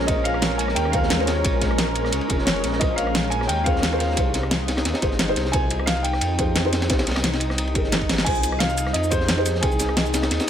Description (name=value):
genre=liquid drum and bass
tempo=176 BPM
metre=4/4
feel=straight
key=Bb dorian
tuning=A4 = 441 Hz
part: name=warm concert grand piano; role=melody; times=0.0-10.5 s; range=Ab4 to Ab5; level=-28 LUFS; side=equal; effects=ping-pong delay
part: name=felt-muted upright piano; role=accompaniment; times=0.0-10.5 s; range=Db4 to G5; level=-28 LUFS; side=left 1 dB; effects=digital delay
part: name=lush unison pad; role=sustained chords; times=0.0-10.5 s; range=Ab3 to Bb4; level=-28 LUFS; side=equal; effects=chorus
part: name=dark detuned saw bass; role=bass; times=0.0-10.4 s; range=F1 to F2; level=-26 LUFS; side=equal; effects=none
part: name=crunchy breakbeat drum kit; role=drums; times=0.1-10.5 s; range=ride cymbal, snare drum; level=-28 LUFS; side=equal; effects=high-pass filter on cymbals, high-pass filter on snare, high-pass filter on room
part: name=electronic kick drum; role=drums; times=0.1-9.7 s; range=none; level=-25 LUFS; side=equal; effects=none
part: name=pop drum kit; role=drums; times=0.1-10.5 s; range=crash cymbal, hi-hat, rim click, shaker, snare drum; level=-24 LUFS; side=equal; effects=none
room=light reverb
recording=none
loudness=-19 LUFS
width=side -9 dB against mid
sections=0.0-10.5 A section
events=drum fill 8.1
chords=0.0 Bbm7; 4.2 Fm9